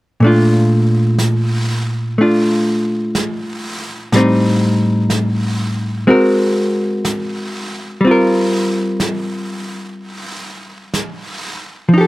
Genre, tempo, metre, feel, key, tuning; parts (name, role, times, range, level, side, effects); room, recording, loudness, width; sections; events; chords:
jazz ballad; 62 BPM; 4/4; swing 67% on 8ths; Bb major; A4 = 436 Hz
hollow-body jazz guitar; accompaniment; 0.2-12.1 s; A2 to Bb4; -13 LUFS; equal
jazz brush drum kit; drums; 0.2-12.1 s; brushed snare drum, hi-hat, snare drum; -25 LUFS; right 2 dB
light reverb; -13 LUFS; side -18 dB against mid
0.2-12.1 A section
0.2 Bbmaj7; 4.1 Am7b5; 6.1 Ab9; 8.0 Gm7